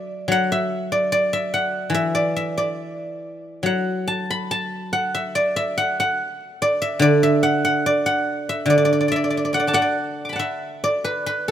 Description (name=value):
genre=chinese traditional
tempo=68-75 BPM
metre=2/4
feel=rubato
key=D gong mode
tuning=A4 = 440 Hz
part: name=guzheng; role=solo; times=0.0-11.5 s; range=D3 to D6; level=-19 LUFS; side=equal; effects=none
room=light reverb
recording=rough home demo mix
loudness=-19 LUFS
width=side -10 dB against mid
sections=0.0-10.4 A section; 10.4-11.5 B section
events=none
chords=none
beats=| 0.30 1.11 | 1.93 2.77 | 3.65 4.52 | 5.36 6.20 | 7.01 7.84 | 8.69 9.54 | 10.40 11.27